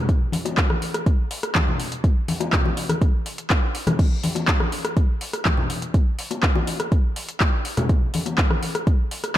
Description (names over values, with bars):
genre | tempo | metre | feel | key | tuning
house | 123 BPM | 4/4 | straight | none | none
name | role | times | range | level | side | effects
deep house drum kit | drums | 0.1-9.4 s | crash cymbal, handclaps, hi-hat, rim click | -25 LUFS | equal | overdrive
electronic kick drum | drums | 0.1-9.0 s | none | -20 LUFS | equal | none
congas and bongos | percussion | 0.3-9.4 s | none | -26 LUFS | left 2 dB | sidechain pumping on perc
room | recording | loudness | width
digital ambience | none | -19 LUFS | side -13 dB against mid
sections
0.0-9.4 A section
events
none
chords
none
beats
| 0.09 0.58 1.06 1.55 | 2.04 2.53 3.02 3.50 | 3.99 4.48 4.97 5.46 | 5.94 6.43 6.92 7.41 | 7.89 8.38 8.87 9.36